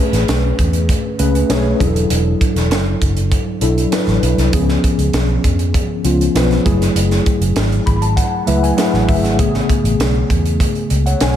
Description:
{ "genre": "polished 1980s jazz-funk pop", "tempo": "99 BPM", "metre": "4/4", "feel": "straight", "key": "A major", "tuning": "A4 = 440 Hz", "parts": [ { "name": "mellow tine electric piano", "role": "accompaniment", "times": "0.0-11.4 s", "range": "C#3 to B5", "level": "-17 LUFS", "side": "left 2 dB", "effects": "medium stereo tremolo, ensemble chorus" }, { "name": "vintage muted fingered electric bass", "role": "bass", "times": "0.1-11.4 s", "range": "E1 to E#2", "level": "-17 LUFS", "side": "equal", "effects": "none" }, { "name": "crisp fusion drum kit", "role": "drums", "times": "0.1-11.3 s", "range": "hi-hat, kick drum, snare drum", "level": "-18 LUFS", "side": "right 1 dB", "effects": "none" } ], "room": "light reverb, small room ambience", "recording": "none", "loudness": "-13 LUFS", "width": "side -10 dB against mid", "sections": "0.0-11.4 A section", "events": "tine electric piano fill 7.6-9.4", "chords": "0.0 Amaj9; 1.8 E9sus4; 4.5 C#7; 6.7 F#m9; 9.4 Amaj9", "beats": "0.28 0.89 1.50 | 2.10 2.71 3.32 3.92 | 4.53 5.14 5.75 6.35 | 6.96 7.57 8.17 8.78 | 9.39 9.99 10.60 11.21" }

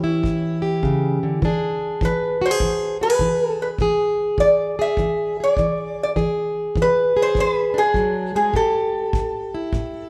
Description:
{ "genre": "acoustic country blues, solo or duo", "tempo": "101 BPM", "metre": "4/4", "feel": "swing 67% on 8ths", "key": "unclear", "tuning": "A4 = 440 Hz", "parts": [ { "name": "lap resonator guitar", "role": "melody", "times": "0.0-10.1 s", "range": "G#4 to E5", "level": "-22 LUFS", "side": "equal", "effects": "none" }, { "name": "fingerpicked plugged-in steel-string acoustic guitar", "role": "accompaniment", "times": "0.0-10.1 s", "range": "A2 to G#4", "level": "-24 LUFS", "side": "equal", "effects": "none" }, { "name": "kick drum", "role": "drums", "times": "0.2-9.9 s", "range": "none", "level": "-28 LUFS", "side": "equal", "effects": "none" } ], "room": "moderate recital hall reverb, RT60 1.6 s", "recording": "recorded in a church or concert hall", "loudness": "-20 LUFS", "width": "mono", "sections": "0.0-10.1 A section", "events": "none", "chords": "0.0 A7; 1.4 E7; 8.5 A5", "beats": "0.25 0.84 | 1.43 2.02 2.61 3.21 | 3.80 4.39 4.98 5.58 | 6.17 6.76 7.36 7.95 | 8.54 9.14 9.73" }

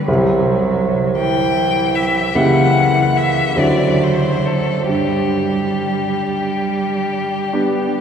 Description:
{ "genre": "classical, slow romantic movement for piano trio", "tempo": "45-55 BPM (dotted quarters)", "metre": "12/8", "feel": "rubato", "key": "unclear", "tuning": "A4 = 441 Hz", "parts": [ { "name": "rich violin", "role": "melody", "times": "0.0-8.0 s", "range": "G4 to G5", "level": "-20 LUFS", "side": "left 4 dB", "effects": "none" }, { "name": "rich cello", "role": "second line", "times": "0.0-8.0 s", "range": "E3 to G3", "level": "-21 LUFS", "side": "right 4 dB", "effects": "none" }, { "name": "clear baby grand piano", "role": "accompaniment", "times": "0.0-8.0 s", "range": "C2 to G4", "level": "-17 LUFS", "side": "right 1 dB", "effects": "none" } ], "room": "wet cathedral reverb, RT60 5.4 s", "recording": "heard from further back in the room", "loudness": "-14 LUFS", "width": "side -7 dB against mid", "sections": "0.0-8.0 A section", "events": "none", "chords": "0.1 C; 2.3 C#dim7; 3.6 D9; 4.9 G", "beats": "| 0.08 1.19 2.35 3.56 | 4.88 6.20 7.53" }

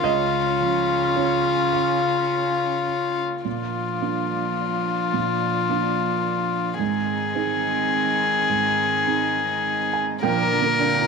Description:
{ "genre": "neoclassical piano and strings", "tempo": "106 BPM", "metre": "3/4", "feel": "rubato", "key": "unclear", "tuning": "A4 = 441 Hz", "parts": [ { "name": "rich violin", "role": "melody", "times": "0.0-11.1 s", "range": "F4 to Bb4", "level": "-22 LUFS", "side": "left 6 dB", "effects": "none" }, { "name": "warm cello", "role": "second line", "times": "0.0-11.1 s", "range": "Db3 to F3", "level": "-31 LUFS", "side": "right 8 dB", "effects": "none" }, { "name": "felt-muted upright piano", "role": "accompaniment", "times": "0.0-11.1 s", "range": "Db2 to Ab5", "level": "-27 LUFS", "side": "right 11 dB", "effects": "none" }, { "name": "warm viola", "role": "accompaniment", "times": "0.0-11.1 s", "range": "C4 to D4", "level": "-32 LUFS", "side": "right 13 dB", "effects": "none" }, { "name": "rich chamber string section", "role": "sustained chords", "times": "0.0-11.1 s", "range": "Bb3 to Eb5", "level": "-35 LUFS", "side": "left 2 dB", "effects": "none" }, { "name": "concert harp", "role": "arpeggios", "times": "10.2-11.1 s", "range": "Bb4 to Bb5", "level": "-30 LUFS", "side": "left 13 dB", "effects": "none" } ], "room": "moderate echo chamber reverb, RT60 1.7 s", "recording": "1960s-style stereo with parts hard left and right", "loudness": "-20 LUFS", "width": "side -5 dB against mid", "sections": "0.0-3.5 A section; 3.5-10.2 B section", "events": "none", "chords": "0.0 Db; 3.5 Bb; 6.8 Ab; 10.2 Bb", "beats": "| 0.04 0.61 1.17 | 1.74 2.31 2.88 | 3.46 4.02 4.58 | 5.14 5.70 6.25 | 6.80 7.36 7.92 | 8.50 9.08 9.65 | 10.23 10.80" }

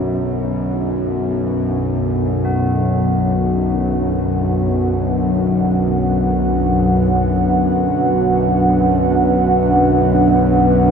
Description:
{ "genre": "dark ambient drone", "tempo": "free time", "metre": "none", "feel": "none", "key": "B minor", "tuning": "A4 = 439 Hz", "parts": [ { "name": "dark analog pad", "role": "sustained chords", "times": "1.0-10.9 s", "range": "D4 to F#5", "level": "-19 LUFS", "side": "right 2 dB", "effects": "chorus" }, { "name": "tubular bells", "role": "arpeggios", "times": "0.0-10.9 s", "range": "E4 to F#4", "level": "-32 LUFS", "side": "equal", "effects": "ping-pong delay" }, { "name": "bowed-like drone", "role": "drone", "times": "0.0-10.9 s", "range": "B1 to F#2", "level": "-16 LUFS", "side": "left 1 dB", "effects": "built-in reverb" } ], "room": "wet cathedral reverb, RT60 6.0 s", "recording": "dark, warm production", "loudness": "-14 LUFS", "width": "side -6 dB against mid", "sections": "0.0-10.9 A section", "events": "fade-in on tubular bells 0.0-10.9", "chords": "0.0 Bm", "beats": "free time" }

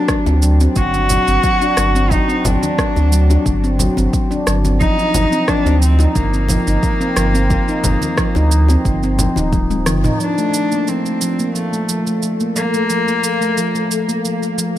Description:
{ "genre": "organic downtempo", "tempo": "89 BPM", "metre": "4/4", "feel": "swing 53% on 16ths", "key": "unclear", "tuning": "A4 = 440 Hz", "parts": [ { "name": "warm cello", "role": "melody", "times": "0.0-14.5 s", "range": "A3 to F#4", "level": "-20 LUFS", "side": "left 1 dB", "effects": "digital delay" }, { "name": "handpan", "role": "arpeggios", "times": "0.0-14.8 s", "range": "F3 to Eb4", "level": "-19 LUFS", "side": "equal", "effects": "vintage 12-bit sampler grit, low-pass filter, digital delay" }, { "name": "electronic kick drum", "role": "drums", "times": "0.1-9.7 s", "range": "none", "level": "-20 LUFS", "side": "equal", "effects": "none" }, { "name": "organic electronic drum kit", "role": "drums", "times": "0.1-14.7 s", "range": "cabasa, rim click, toms", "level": "-23 LUFS", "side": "right 1 dB", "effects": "none" }, { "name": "warm sub bass", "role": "bass", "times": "0.3-10.1 s", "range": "D1 to D2", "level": "-15 LUFS", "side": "equal", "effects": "tube saturation, sidechain pumping" }, { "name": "bongos and congas", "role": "percussion", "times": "0.3-10.2 s", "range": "none", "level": "-25 LUFS", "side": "left 3 dB", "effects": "none" }, { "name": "granular cloud pad", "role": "sustained chords", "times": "11.9-14.8 s", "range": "A4 to F5", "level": "-26 LUFS", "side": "left 5 dB", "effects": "built-in reverb, sidechain pumping" } ], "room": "little or no reverb", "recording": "none", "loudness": "-13 LUFS", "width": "side -13 dB against mid", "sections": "0.0-10.2 A section; 10.2-14.8 B section", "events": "drum fill 9.5-10.2; band accent 9.9-10.2", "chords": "0.0 D7/G; 4.8 F7sus4/G; 10.2 Fadd11", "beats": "0.09 0.76 1.44 | 2.11 2.79 3.46 4.13 | 4.81 5.48 6.16 6.83 | 7.50 8.18 8.85 9.53 | 10.20 10.88 11.55 12.22 | 12.90 13.57 14.24" }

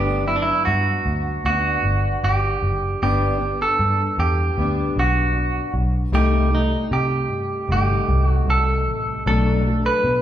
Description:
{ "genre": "indie pop, bedroom pop", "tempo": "77 BPM", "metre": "4/4", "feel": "straight", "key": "G major", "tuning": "A4 = 440 Hz", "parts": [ { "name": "clean electric guitar", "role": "melody", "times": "0.0-10.2 s", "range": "D4 to B4", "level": "-22 LUFS", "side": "right 2 dB", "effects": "none" }, { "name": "fingerpicked plugged-in steel-string acoustic guitar", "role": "accompaniment", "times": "0.0-10.2 s", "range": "G2 to Eb4", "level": "-26 LUFS", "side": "left 3 dB", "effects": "vibrato effect" }, { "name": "vintage muted picked electric bass", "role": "bass", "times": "0.0-10.2 s", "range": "F#1 to C3", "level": "-21 LUFS", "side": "equal", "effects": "none" } ], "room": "wet recital hall reverb, RT60 1.5 s", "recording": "recorded in a church or concert hall", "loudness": "-18 LUFS", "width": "side -11 dB against mid", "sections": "0.0-10.2 A section", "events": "none", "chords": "0.0 Gmaj7; 6.1 Cm6; 9.2 Bm7", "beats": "0.68 1.46 2.24 | 3.02 3.80 4.58 5.36 | 6.13 6.91 7.69 8.47 | 9.25 10.03" }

